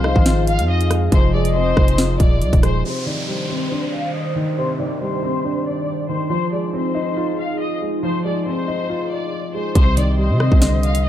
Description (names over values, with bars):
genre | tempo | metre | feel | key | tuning
hip hop, drill | 139 BPM | 4/4 | half-time | C minor | A4 = 440 Hz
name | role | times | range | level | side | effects
bright studio violin section | melody | 0.0-11.1 s | C5 to F5 | -26 LUFS | left 2 dB | low-pass filter
gliding portamento lead | second line | 0.0-2.8, 9.8-11.1 s | Eb5 to F5 | -26 LUFS | left 3 dB | chorus, tape echo
dark baby grand piano | accompaniment | 0.0-11.1 s | C3 to F4 | -24 LUFS | equal | low-pass filter
warbly tape-like pad | sustained chords | 0.0-9.7 s | Eb3 to C5 | -27 LUFS | right 1 dB | chorus, built-in reverb, phaser, low-pass filter
growling 808-style bass | bass | 0.0-2.8, 9.8-11.1 s | Eb1 to C3 | -18 LUFS | equal | none
drill drum kit | drums | 0.0-2.7, 9.8-11.0 s | hi-hat, kick drum, rim click, snare drum | -16 LUFS | equal | none
downlifter | sound effects | 2.8-6.3 s | none | -31 LUFS | right 1 dB | none
room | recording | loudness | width
little or no reverb | dark, warm production | -16 LUFS | side -11 dB against mid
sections
0.0-2.8 A section; 2.8-9.8 B section; 9.8-11.1 A section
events
filter sweep 2.8-9.8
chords
0.0 Fm7; 2.8 Cmadd9; 6.3 Fm7; 9.8 Cmadd9